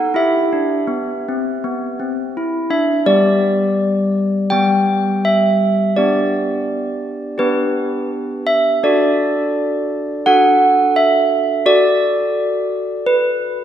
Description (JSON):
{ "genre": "classical, tune for handbells", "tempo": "84 BPM", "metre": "4/4", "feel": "straight", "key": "E minor, G major from 3.1 s", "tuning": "A4 = 440 Hz", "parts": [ { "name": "handbells", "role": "solo", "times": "0.0-13.6 s", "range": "G3 to G5", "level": "-14 LUFS", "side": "equal", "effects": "none" } ], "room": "wet church reverb, RT60 2.5 s", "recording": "recorded in a church or concert hall", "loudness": "-14 LUFS", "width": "side -10 dB against mid", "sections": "0.0-3.1 A section; 3.1-13.6 B section", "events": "none", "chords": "0.1 Em; 3.1 G; 6.0 G/B; 8.8 D; 11.6 D/F#" }